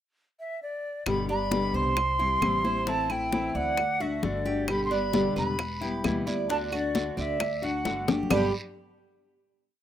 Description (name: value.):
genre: latin, Cuban son and guajira.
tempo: 133 BPM.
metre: 4/4.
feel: straight.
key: G major.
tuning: A4 = 440 Hz.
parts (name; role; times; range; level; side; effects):
jazz flute; melody; 0.4-8.5 s; D5 to C6; -30 LUFS; equal; plate reverb.
nylon-string guitar; accompaniment; 1.1-8.5 s; G2 to G4; -30 LUFS; left 2 dB; none.
upright bass; bass; 1.1-8.5 s; E1 to D2; -35 LUFS; equal; none.
bongos; percussion; 1.1-8.4 s; none; -31 LUFS; left 5 dB; none.
claves; percussion; 1.1-8.4 s; none; -35 LUFS; right 4 dB; none.
congas; percussion; 1.1-8.4 s; none; -33 LUFS; equal; none.
Cuban tres; arpeggios; 1.3-8.5 s; G3 to D5; -33 LUFS; right 5 dB; none.
guiro; percussion; 4.7-8.4 s; none; -43 LUFS; right 3 dB; none.
room: moderate studio reverb, RT60 0.6 s.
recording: rough home demo mix.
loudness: -25 LUFS.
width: side -10 dB against mid.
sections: 0.0-1.1 pickup bar; 1.1-8.3 verse; 8.3-9.8 final chord.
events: drum fill 7.9-8.3.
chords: 0.0 N.C.; 1.1 G; 2.0 C; 2.9 Am; 3.8 D; 4.7 Em; 6.5 D; 8.3 G.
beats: 0.16 0.61 | 1.06 1.52 1.97 2.42 | 2.87 3.33 3.78 4.23 | 4.68 5.14 5.59 6.04 | 6.50 6.95 7.40 7.85 | 8.31.